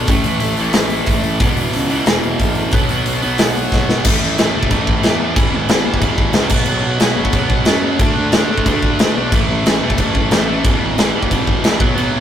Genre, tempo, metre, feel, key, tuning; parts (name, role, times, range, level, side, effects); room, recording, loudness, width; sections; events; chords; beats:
punk rock; 182 BPM; 4/4; straight; E major; A4 = 440 Hz
tight distorted guitar; riff; 0.0-12.2 s; E2 to D4; -18 LUFS; right 1 dB; distortion
fuzz picked electric bass; bass; 0.0-12.2 s; E1 to A2; -21 LUFS; equal; overdrive
big rock drum kit; drums; 0.1-12.0 s; crash cymbal, hi-hat, kick drum, snare drum; -16 LUFS; equal
light reverb; rough rehearsal-room recording; -13 LUFS; side -10 dB against mid
0.0-4.0 A section; 4.0-12.2 B section
half time 0.0-4.0; drum fill 3.7-4.0
0.1 A5; 1.4 E5; 2.7 B5; 4.0 A5; 5.4 E/G#; 6.5 B5; 8.0 D5; 9.3 A5; 10.6 E/G#
| 0.08 0.41 0.74 1.08 | 1.41 1.74 2.07 2.40 | 2.73 3.06 3.39 3.72 | 4.05 4.38 4.71 5.04 | 5.37 5.70 6.03 6.36 | 6.69 7.02 7.34 7.67 | 8.00 8.33 8.66 8.99 | 9.32 9.65 9.98 10.31 | 10.64 10.97 11.30 11.63 | 11.96